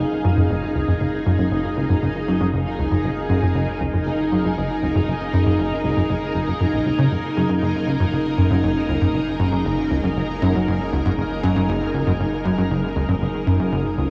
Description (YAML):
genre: ambient, sequencer-driven space music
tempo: 118 BPM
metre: 4/4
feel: straight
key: unclear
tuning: A4 = 440 Hz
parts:
  - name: string machine, full ensemble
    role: sustained chords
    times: 0.0-14.1 s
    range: Eb4 to F5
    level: -25 LUFS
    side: equal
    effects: ensemble chorus, shimmer reverb
  - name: plucky analog bass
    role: riff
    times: 0.0-14.1 s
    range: Gb1 to Db3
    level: -23 LUFS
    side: equal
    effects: subtle chorus, analog delay
  - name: warm sub bass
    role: bass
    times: 0.0-14.1 s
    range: Gb1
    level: -38 LUFS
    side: equal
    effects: none
room: wet huge ambient reverb, RT60 8.7 s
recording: worn, warbling old tape, cassette tape, warbly pitch drift, studio ambience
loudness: -21 LUFS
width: mono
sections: 0.0-14.1 A section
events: none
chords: 0.0 Gbmaj7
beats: 0.50 | 1.01 1.52 2.03 2.53 | 3.04 3.55 4.06 4.57 | 5.08 5.58 6.09 6.60 | 7.11 7.62 8.13 8.64 | 9.14 9.65 10.16 10.67 | 11.18 11.69 12.20 12.70 | 13.21 13.72